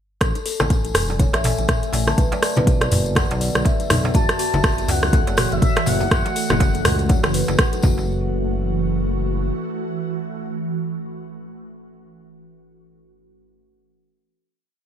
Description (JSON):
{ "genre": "afro house", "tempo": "122 BPM", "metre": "4/4", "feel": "swing 58% on 16ths", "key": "F# minor", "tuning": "A4 = 442 Hz", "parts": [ { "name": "ethereal airy pad", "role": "sustained chords", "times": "1.0-12.4 s", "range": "C#3 to G#5", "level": "-27 LUFS", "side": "right 2 dB", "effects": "ensemble chorus, built-in reverb, phaser, sidechain pumping" }, { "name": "kalimba", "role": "arpeggios", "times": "0.2-8.3 s", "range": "C#4 to A5", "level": "-28 LUFS", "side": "left 1 dB", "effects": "sidechain pumping, ping-pong delay" }, { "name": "smooth synth bass", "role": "bass", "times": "0.2-9.5 s", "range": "E1 to C#2", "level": "-24 LUFS", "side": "equal", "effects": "tube saturation, sidechain pumping" }, { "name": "afro-pop drum kit", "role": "drums", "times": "0.2-7.8 s", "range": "hi-hat, rim click, toms", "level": "-22 LUFS", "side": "right 1 dB", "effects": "none" }, { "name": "electronic kick drum", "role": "drums", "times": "0.2-7.9 s", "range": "none", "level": "-19 LUFS", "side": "equal", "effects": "none" }, { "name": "darbuka", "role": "percussion", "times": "0.2-8.1 s", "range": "none", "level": "-29 LUFS", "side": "right 2 dB", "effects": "none" }, { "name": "tambourine", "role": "percussion", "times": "0.2-8.1 s", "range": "none", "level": "-34 LUFS", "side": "left 5 dB", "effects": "none" }, { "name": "congas", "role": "percussion", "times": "0.4-8.0 s", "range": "none", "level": "-28 LUFS", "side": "left 2 dB", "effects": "none" }, { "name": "expressive portamento lead", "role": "melody", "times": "4.1-7.6 s", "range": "E5 to A5", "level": "-26 LUFS", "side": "left 2 dB", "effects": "wide subtle chorus, ping-pong delay" } ], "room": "light reverb, small room ambience", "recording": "bright 1980s-style digital production", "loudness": "-17 LUFS", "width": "side -9 dB against mid", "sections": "0.2-8.1 drop; 8.1-12.0 final hit", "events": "drop 0.2-8.1", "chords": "0.2 Amaj7; 2.2 Bm7; 4.1 F#m7" }